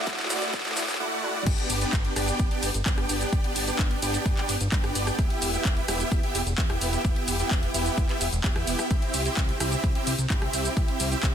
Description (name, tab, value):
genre	EDM, festival progressive house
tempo	129 BPM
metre	4/4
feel	straight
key	G major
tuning	A4 = 444 Hz
part	supersaw chords	riff	0.0-11.3 s	A3 to G5	-28 LUFS	right 1 dB	analog chorus, sidechain pumping, ping-pong delay
part	house drum kit	drums	0.0-11.3 s	crash cymbal, handclaps, hi-hat, ride cymbal, rim click, shaker, snare drum, toms	-30 LUFS	equal	overdrive, high-pass filter on hats, high-pass filter on snare, high-pass filter on perc, high-pass filter on toms, high-pass filter on cymbals
part	fat analog bass	bass	0.1-11.3 s	E1 to G2	-31 LUFS	equal	sidechain pumping, high-pass filter
part	electronic kick drum	drums	0.1-11.3 s	none	-25 LUFS	equal	overdrive
room	light reverb, digital ambience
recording	dense, heavily limited modern master, high-pass filter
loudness	-23 LUFS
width	side -9 dB against mid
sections	0.0-1.5 A section; 1.5-11.3 B section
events	build-up 0.0-1.5; drum fill 0.0-1.0, 1.2; drop 1.5-11.3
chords	0.0 Dadd9; 1.5 G; 5.2 Em; 8.9 C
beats	0.07 0.54 1.00 | 1.47 1.93 2.40 2.86 | 3.33 3.79 4.26 4.72 | 5.19 5.65 6.12 6.58 | 7.05 7.51 7.98 8.44 | 8.91 9.37 9.84 10.30 | 10.77 11.23